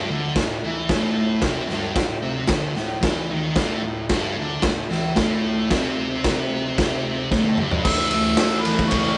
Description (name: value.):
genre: garage rock duo or trio.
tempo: 112 BPM.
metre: 4/4.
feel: straight.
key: unclear.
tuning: A4 = 440 Hz.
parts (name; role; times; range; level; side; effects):
thick fuzz guitar; riff; 0.0-9.2 s; G2 to A3; -26 LUFS; equal; distortion.
raw garage drum kit; drums; 0.4-9.0 s; crash cymbal, kick drum, ride cymbal, snare drum, toms; -25 LUFS; equal; none.
bright harmonica; melody; 7.8-9.2 s; B4 to E5; -27 LUFS; equal; overdrive.
room: light reverb.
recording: rough rehearsal-room recording, nothing above 10.4 kHz.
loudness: -22 LUFS.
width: mono.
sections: 0.0-7.9 A section; 7.9-9.2 B section.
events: drum fill 7.3-7.9.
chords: 0.0 A5; 7.9 A.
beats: 0.36 0.89 | 1.42 1.96 2.49 3.03 | 3.57 4.10 4.64 5.17 | 5.71 6.25 6.78 7.32 | 7.86 8.39 8.93.